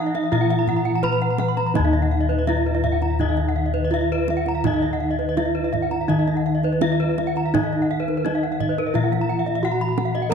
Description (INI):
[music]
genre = Balinese gamelan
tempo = 83 BPM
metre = 4/4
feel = straight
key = Eb pelog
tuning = A4 = 440 Hz
[part]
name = gamelan-type bronze metallophone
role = melody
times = 0.0-10.3 s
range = Eb4 to Cb5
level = -25 LUFS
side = right 2 dB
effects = none
[part]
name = mandolin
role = second line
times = 0.0-1.3 s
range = Eb4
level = -39 LUFS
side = right 1 dB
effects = none
[part]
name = gamelan-type bronze metallophone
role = accompaniment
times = 0.0-10.3 s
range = Eb3 to Bb3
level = -30 LUFS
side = equal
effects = none
[part]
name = gamelan-type bronze metallophone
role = arpeggios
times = 0.0-10.3 s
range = Bb4 to Cb6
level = -27 LUFS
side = left 4 dB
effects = none
[part]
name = gamelan-type bronze metallophone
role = arpeggios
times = 0.1-10.3 s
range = Bb4 to Cb6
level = -28 LUFS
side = right 6 dB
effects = none
[part]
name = kendang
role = percussion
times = 0.1-10.3 s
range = none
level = -30 LUFS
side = right 8 dB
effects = none
[part]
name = gamelan-type bossed gongs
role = bass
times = 0.3-10.3 s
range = Eb2 to Bb4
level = -24 LUFS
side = left 4 dB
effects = none
[sound]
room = moderate scoring stage reverb, RT60 1.8 s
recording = dark, warm production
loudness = -19 LUFS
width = side -6 dB against mid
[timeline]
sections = 0.0-1.8 A section; 1.8-10.3 B section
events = none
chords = none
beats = 0.33 1.03 | 1.75 2.47 3.20 3.92 | 4.64 5.37 6.09 6.81 | 7.53 8.25 8.95 9.63 | 10.30